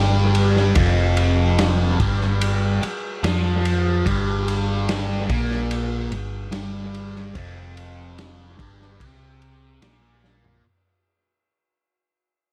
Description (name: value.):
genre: psychedelic rock.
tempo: 73 BPM.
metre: 4/4.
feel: straight.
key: unclear.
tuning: A4 = 445 Hz.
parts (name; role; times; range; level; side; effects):
fuzz guitar; riff; 0.0-10.6 s; F2 to F4; -26 LUFS; equal; distortion, phaser.
picked electric bass; bass; 0.0-10.6 s; F1 to F2; -24 LUFS; equal; none.
vintage drum kit; drums; 0.3-10.6 s; kick drum, ride cymbal, snare drum, toms; -28 LUFS; equal; dub echo.
room: light reverb, small room ambience.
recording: echo-heavy mix.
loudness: -21 LUFS.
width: mono.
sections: 0.0-10.6 A section.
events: fade-out 0.0-10.6; drum fill 10.2-10.6.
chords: 0.0 Fsus24.